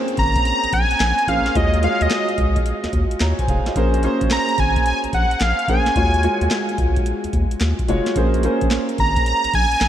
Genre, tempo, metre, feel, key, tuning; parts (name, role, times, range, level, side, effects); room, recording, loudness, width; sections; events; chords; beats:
R&B, new jack swing; 109 BPM; 4/4; swing 66% on 16ths; Bb minor; A4 = 441 Hz
warm concert grand piano; accompaniment; 0.0-9.9 s; Ab3 to Bb5; -22 LUFS; right 1 dB; analog chorus
booming analog drum machine; drums; 0.1-9.9 s; handclaps, hi-hat, kick drum, snare drum; -22 LUFS; equal
wide unison lead; melody; 0.2-9.9 s; Eb5 to Bb5; -20 LUFS; right 1 dB; ping-pong delay
round analog bass; bass; 0.2-9.9 s; F1 to Eb2; -21 LUFS; equal
moderate cathedral reverb, RT60 4.6 s; dreamy mix soaked in reverb; -16 LUFS; side -10 dB against mid
0.0-9.9 A section
0.0 Bbm9; 1.6 Ebm11; 3.8 Bbm9; 6.0 Ebm11; 8.2 Bbm9
0.45 1.00 | 1.55 2.10 2.65 3.21 | 3.76 4.31 4.86 5.41 | 5.96 6.51 7.06 7.61 | 8.16 8.71 9.26 9.81